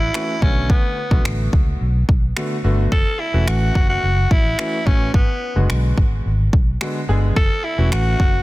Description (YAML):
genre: dance-pop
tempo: 108 BPM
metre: 4/4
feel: straight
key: F# minor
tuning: A4 = 440 Hz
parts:
  - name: raspy alto saxophone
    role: melody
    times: 0.0-8.4 s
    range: B3 to A4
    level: -23 LUFS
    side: equal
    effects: tape echo
  - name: vintage muted fingered electric bass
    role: bass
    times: 0.0-8.4 s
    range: E1 to C#2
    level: -19 LUFS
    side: equal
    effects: sidechain pumping
  - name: clear concert grand piano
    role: accompaniment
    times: 0.1-8.4 s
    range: D3 to G#4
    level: -26 LUFS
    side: equal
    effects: sidechain pumping
  - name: pop drum kit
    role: drums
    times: 0.1-8.3 s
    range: finger snaps, kick drum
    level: -18 LUFS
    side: equal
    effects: overdrive, soft clipping on snare
room: digital ambience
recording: dense, heavily limited modern master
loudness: -16 LUFS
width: side -18 dB against mid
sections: 0.0-8.4 A section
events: none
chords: 0.4 Bm7; 2.9 F#m7; 5.1 G#m7b5; 7.4 F#m7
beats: 0.14 | 0.70 1.25 1.81 2.36 | 2.92 3.48 4.03 4.59 | 5.14 5.70 6.25 6.81 | 7.36 7.92